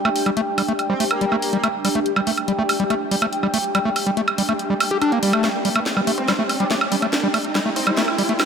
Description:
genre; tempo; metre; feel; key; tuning
psychedelic trance; 142 BPM; 4/4; straight; G minor; A4 = 444 Hz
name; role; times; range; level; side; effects
riser; sound effects; 1.7-8.5 s; none; -30 LUFS; right 2 dB; none
airy breathy pad; texture; 0.0-8.5 s; D4 to G5; -25 LUFS; equal; chorus, phaser
screaming distorted acid line; riff; 0.1-8.3 s; G3 to G4; -22 LUFS; left 1 dB; distortion, chorus, auto-pan, tape echo
garage drum kit; drums; 0.1-8.5 s; hi-hat, snare drum, woodblock; -23 LUFS; right 2 dB; none
metallic wobble bass; second line; 0.9-1.7, 6.2-8.1 s; Bb3 to D4; -32 LUFS; right 1 dB; wide subtle chorus, high-pass filter, tape echo
room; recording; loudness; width
wet lush hall reverb, RT60 1.9 s, digital ambience; high-pass filter; -18 LUFS; side -6 dB against mid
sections
0.0-8.5 A section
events
build-up 0.0-8.5; riser 1.7-8.5; drum fill 5.4-8.5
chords
0.0 G5

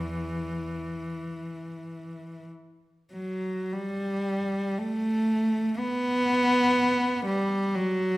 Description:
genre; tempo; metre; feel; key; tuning
classical, free, expressive piece for unaccompanied cello; free time; none; none; unclear; A4 = 442 Hz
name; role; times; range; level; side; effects
warm cello; solo; 0.0-8.2 s; E2 to B3; -25 LUFS; equal; none
room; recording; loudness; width
moderate recital hall reverb, RT60 1.4 s; none; -25 LUFS; side -18 dB against mid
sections
0.0-3.7 A section; 3.7-8.2 B section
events
none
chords
none

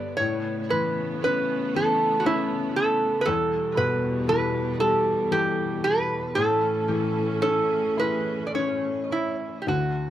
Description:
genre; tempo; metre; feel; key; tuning
celtic folk, Celtic slow air; 51-59 BPM; 3/4; rubato; unclear; A4 = 439 Hz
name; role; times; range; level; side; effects
metal-body resonator slide guitar; melody; 0.0-10.1 s; E4 to D5; -24 LUFS; right 2 dB; tape echo
felt-muted upright piano; accompaniment; 0.0-10.1 s; D2 to E4; -29 LUFS; left 6 dB; none
bright symphonic string section; sustained chords; 0.0-9.6 s; E2 to C#4; -32 LUFS; right 2 dB; none
room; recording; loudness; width
moderate booth ambience, RT60 0.2 s; dry, close 1970s-style studio recording; -22 LUFS; side -11 dB against mid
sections
0.0-9.7 A section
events
none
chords
0.2 Aadd9; 3.3 Em; 6.4 A

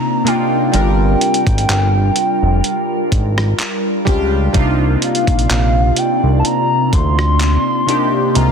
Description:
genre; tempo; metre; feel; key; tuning
contemporary R&B; 63 BPM; 4/4; swing 54% on 16ths; C minor; A4 = 440 Hz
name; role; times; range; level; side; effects
hollow clarinet-like synth lead; melody; 0.0-8.5 s; F5 to C6; -19 LUFS; equal; chorus, ping-pong delay
warm analog keys; accompaniment; 0.0-8.5 s; C3 to Bb4; -19 LUFS; right 1 dB; chorus, phaser
glassy FM pad; sustained chords; 0.0-8.5 s; C3 to D5; -21 LUFS; left 1 dB; ensemble chorus, built-in reverb, sidechain pumping
dusty soul sampler-style drum kit; drums; 0.3-8.5 s; handclaps, hi-hat, kick drum, rim click; -19 LUFS; equal; none
fat analog bass; bass; 0.7-8.5 s; F1 to D2; -15 LUFS; equal; none
room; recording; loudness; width
digital ambience; dense, heavily limited modern master; -12 LUFS; side -6 dB against mid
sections
0.0-8.5 A section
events
none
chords
0.0 Cm11; 0.7 Gm7; 4.5 Cm11

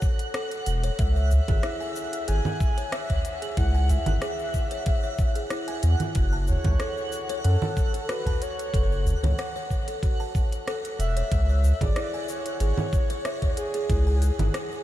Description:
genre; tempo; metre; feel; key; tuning
organic downtempo; 93 BPM; 4/4; swing 54% on 16ths; F# minor; A4 = 440 Hz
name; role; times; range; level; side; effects
electronic kick drum; drums; 0.0-14.0 s; none; -24 LUFS; equal; none
organic electronic drum kit; drums; 0.0-14.8 s; cabasa, congas, hi-hat, rim click; -34 LUFS; right 1 dB; none
twinkling granular texture; texture; 0.0-14.8 s; F#5; -38 LUFS; right 2 dB; built-in reverb, lush chorus
buzzing kalimba; arpeggios; 0.3-14.7 s; E4 to A5; -33 LUFS; left 1 dB; ping-pong delay
round analog bass; bass; 0.7-14.5 s; E1 to F#2; -22 LUFS; equal; none
breathy flute-like synth lead; melody; 1.0-14.8 s; G#4 to G#5; -34 LUFS; equal; chorus, vintage 12-bit sampler grit, ping-pong delay
udu; percussion; 1.3-14.4 s; none; -29 LUFS; right 1 dB; none
room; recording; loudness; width
light reverb, digital ambience; none; -23 LUFS; side -13 dB against mid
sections
0.0-14.8 A section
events
none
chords
0.0 F#m; 1.0 C#m; 6.2 F#m; 11.3 C#m

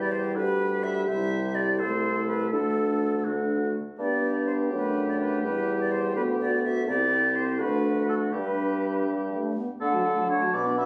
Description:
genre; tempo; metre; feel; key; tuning
quick classical-period movement for wind quintet; 83 BPM (dotted quarters); 6/8; straight; G major; A4 = 436 Hz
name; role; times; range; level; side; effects
bright silver concert flute; melody; 0.0-10.9 s; A4 to D6; -33 LUFS; equal; none
mellow oboe; second line; 0.0-10.9 s; F#4 to E5; -37 LUFS; equal; none
mellow clarinet; accompaniment; 0.0-10.9 s; D4 to G4; -34 LUFS; equal; none
warm French horn; accompaniment; 0.0-10.9 s; F#3 to D4; -34 LUFS; equal; none
mellow bassoon; bass; 0.0-10.9 s; C2 to D3; -30 LUFS; equal; none
room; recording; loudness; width
moderate recital hall reverb, RT60 1.7 s; recorded on a phone in the room, club reverb, compression; -26 LUFS; mono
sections
0.0-9.8 A section; 9.8-10.9 B section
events
none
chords
0.0 Em; 1.1 C; 1.8 Am/C; 2.5 D5; 4.0 G; 5.4 Em; 6.9 C; 7.6 D; 8.3 G; 9.8 D

